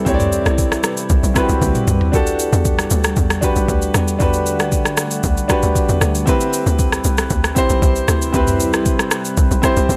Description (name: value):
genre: amapiano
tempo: 116 BPM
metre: 4/4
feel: straight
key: unclear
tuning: A4 = 440 Hz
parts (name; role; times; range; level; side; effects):
- warm grand piano; accompaniment; 0.0-10.0 s; C4 to D5; -22 LUFS; equal; none
- deep dark ambient pad; sustained chords; 0.0-10.0 s; C3 to F#5; -28 LUFS; equal; chorus, built-in reverb
- hollow log drum bass; bass; 0.0-10.0 s; B1 to E2; -21 LUFS; equal; none
- smooth R&B drum kit; drums; 0.1-10.0 s; kick drum, rim click, shaker, toms; -21 LUFS; equal; none
room: little or no reverb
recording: none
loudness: -17 LUFS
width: mono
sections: 0.0-10.0 A section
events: drum fill 1.6-2.1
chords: 0.0 D13sus4; 2.1 Em11; 6.3 D13sus4